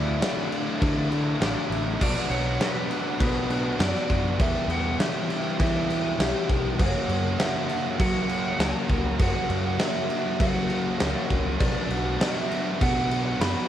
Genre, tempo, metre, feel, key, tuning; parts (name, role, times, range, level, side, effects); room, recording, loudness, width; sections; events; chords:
rock, shoegaze and dream pop; 100 BPM; 4/4; straight; A4 = 441 Hz
electric guitar through a small old amp; melody; 0.0-13.7 s; B4 to B5; -32 LUFS; right 2 dB; phaser, cassette tape, analog delay
biting overdriven guitar; riff; 0.0-13.7 s; E2 to G4; -30 LUFS; right 8 dB; reverse reverb
overdriven semi-hollow guitar; riff; 0.0-13.7 s; E2 to G4; -30 LUFS; left 9 dB; lush chorus
growling picked electric bass; bass; 0.0-13.5 s; A1 to F#3; -28 LUFS; equal; overdrive
huge arena drum kit; drums; 0.2-13.6 s; crash cymbal, kick drum, snare drum; -27 LUFS; equal; cassette tape
light reverb; home recording on cassette; -22 LUFS; side -11 dB against mid
0.0-2.0 A section; 2.0-13.7 B section
0.0 Dsus2; 2.0 Bm; 4.4 Em; 6.8 F#; 11.6 Bm